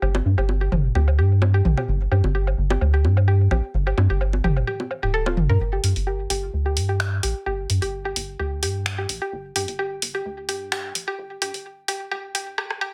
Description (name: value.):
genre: minimal techno.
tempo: 129 BPM.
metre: 4/4.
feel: swing 53% on 16ths.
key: G minor.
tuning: A4 = 440 Hz.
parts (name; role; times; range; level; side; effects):
mallet-like synth pluck; riff; 0.0-12.9 s; F4 to Bb4; -31 LUFS; equal; chorus, tape echo.
rubbery square bass; bass; 0.0-12.6 s; D1 to G2; -23 LUFS; equal; none.
electronic woodblock, bongos and toms; percussion; 0.0-5.5 s; none; -29 LUFS; equal; digital delay.
punchy analog drum machine; drums; 0.1-12.8 s; finger snaps, hi-hat, rim click, shaker; -28 LUFS; equal; overdrive, low-pass filter on perc, low-pass filter on hats, low-pass filter on snare, low-pass filter on room.
room: little or no reverb.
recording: high-pass filter.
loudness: -23 LUFS.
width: mono.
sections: 0.0-5.6 A section; 5.6-12.9 B section.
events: filter sweep on synth arpeggio sound 0.0-5.6, 5.6-12.9; build-up 5.6-12.9; filter sweep 5.6-12.9; drum fill 12.6-12.9.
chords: 0.0 G5.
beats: | 0.02 0.49 0.95 1.42 | 1.88 2.35 2.81 3.28 | 3.74 4.21 4.67 5.14 | 5.60 6.07 6.53 7.00 | 7.46 7.93 8.39 8.86 | 9.32 9.79 10.26 10.72 | 11.19 11.65 12.12 12.58.